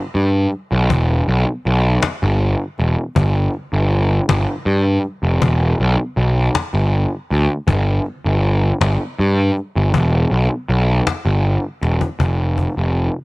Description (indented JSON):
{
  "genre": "psychedelic rock",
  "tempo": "53 BPM (dotted quarters)",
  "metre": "6/8",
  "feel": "straight",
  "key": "unclear",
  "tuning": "A4 = 440 Hz",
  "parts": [
    { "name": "fuzz picked electric bass", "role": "bass", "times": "0.1-13.1 s", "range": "E1 to G2", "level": "-15 LUFS", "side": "equal", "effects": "overdrive" },
    { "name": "cajon", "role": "drums", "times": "0.1-13.0 s", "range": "none", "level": "-22 LUFS", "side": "left 3 dB", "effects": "none" }
  ],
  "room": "studio ambience",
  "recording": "1960s-style stereo",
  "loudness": "-15 LUFS",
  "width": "side -23 dB against mid",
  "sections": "0.0-12.2 A section; 12.2-13.2 B section",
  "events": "drum fill 11.8-12.2",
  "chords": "none"
}